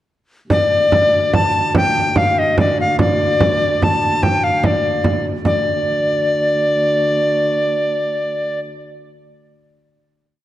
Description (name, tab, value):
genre	medieval dance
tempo	147 BPM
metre	3/4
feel	straight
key	D minor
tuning	A4 = 444 Hz
part	breathy bright tenor recorder	melody	0.5-8.6 s	D5 to A5	-16 LUFS	left 1 dB	none
part	warm viola da gamba	drone	0.5-8.6 s	D2	-24 LUFS	equal	none
part	frame drum	percussion	0.5-5.6 s	none	-18 LUFS	right 2 dB	none
room	wet concert hall reverb, RT60 1.9 s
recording	dark, warm production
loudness	-14 LUFS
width	side -14 dB against mid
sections	0.5-5.5 A section; 5.5-7.8 final note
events	speeding up 0.5-7.8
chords	none